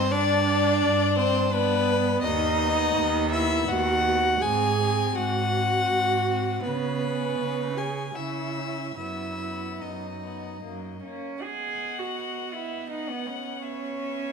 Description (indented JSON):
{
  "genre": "classical, slow romantic movement for string quartet",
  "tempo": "70-86 BPM",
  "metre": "3/4",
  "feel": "rubato",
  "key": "B major",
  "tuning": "A4 = 440 Hz",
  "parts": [
    { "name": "warm violin", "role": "melody", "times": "0.0-14.3 s", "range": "A#3 to F#5", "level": "-32 LUFS", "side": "left 11 dB", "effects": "none" },
    { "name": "rich violin", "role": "second line", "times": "0.0-14.3 s", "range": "B4 to G#5", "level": "-27 LUFS", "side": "left 2 dB", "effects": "none" },
    { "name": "dark viola", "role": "accompaniment", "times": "0.0-14.3 s", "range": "B3 to G#4", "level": "-29 LUFS", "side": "right 4 dB", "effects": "none" },
    { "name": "rich cello", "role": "bass", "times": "0.0-14.3 s", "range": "D#2 to G#4", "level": "-30 LUFS", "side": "right 4 dB", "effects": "none" }
  ],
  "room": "moderate recital hall reverb, RT60 1.7 s",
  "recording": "minimal, uncompressed stereo recording",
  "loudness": "-23 LUFS",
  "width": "side -6 dB against mid",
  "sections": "0.0-11.4 A section; 11.4-14.3 B section",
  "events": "none",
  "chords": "0.1 G; 2.2 B/D#; 4.4 G#7; 6.6 C#m7; 9.0 B/F#; 10.6 F#; 11.4 B; 13.6 C#m7/B",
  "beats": "| 0.11 0.81 1.52 | 2.24 2.95 3.67 | 4.41 5.14 5.88 | 6.63 7.38 8.15 | 8.96 9.81 10.62 | 11.41 12.16 12.90 | 13.62"
}